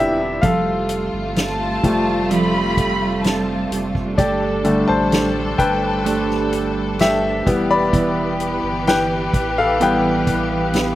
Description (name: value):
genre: pop ballad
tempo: 64 BPM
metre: 4/4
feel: straight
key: unclear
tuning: A4 = 440 Hz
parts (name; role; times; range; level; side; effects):
- clear concert grand piano; accompaniment; 0.0-11.0 s; D3 to B5; -20 LUFS; left 2 dB; slapback echo
- warm studio string section; sustained chords; 0.0-11.0 s; C3 to B4; -24 LUFS; equal; none
- fingerpicked steel-string acoustic guitar; arpeggios; 0.0-11.0 s; E3 to B4; -24 LUFS; right 5 dB; none
- warm sub bass; bass; 0.0-11.0 s; E1 to A1; -30 LUFS; equal; none
- soft-mallet drum kit; drums; 0.4-11.0 s; hi-hat, kick drum, snare drum; -21 LUFS; equal; none
- warm studio violin section; second line; 1.4-4.0 s; A5 to B5; -24 LUFS; equal; none
room: little or no reverb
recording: recorded outdoors, with no room sound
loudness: -16 LUFS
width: side -14 dB against mid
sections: 0.0-11.0 A section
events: grand piano solo 0.0-11.0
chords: 0.4 Fadd9; 4.2 Gsus2; 7.5 Em